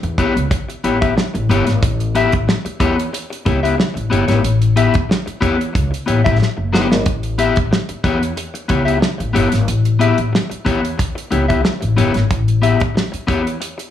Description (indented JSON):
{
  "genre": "funk",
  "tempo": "92 BPM",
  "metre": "4/4",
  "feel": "straight",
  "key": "A mixolydian",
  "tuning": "A4 = 439 Hz",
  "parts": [
    { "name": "electric guitar at the edge of break-up", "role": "accompaniment", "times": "0.0-13.8 s", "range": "B3 to E5", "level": "-18 LUFS", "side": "left 3 dB", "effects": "spring reverb, plate reverb" },
    { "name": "upright bass", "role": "bass", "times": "0.0-13.6 s", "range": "F#1 to E2", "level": "-18 LUFS", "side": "left 1 dB", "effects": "none" },
    { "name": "damped 70s drum kit", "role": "drums", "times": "0.0-13.9 s", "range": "hi-hat, kick drum, snare drum", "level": "-19 LUFS", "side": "right 1 dB", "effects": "none" }
  ],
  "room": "light reverb",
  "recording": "small room ambience",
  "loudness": "-14 LUFS",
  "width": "side -10 dB against mid",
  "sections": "0.0-13.9 A section",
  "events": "drum fill 6.4-7.1",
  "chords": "0.0 A9"
}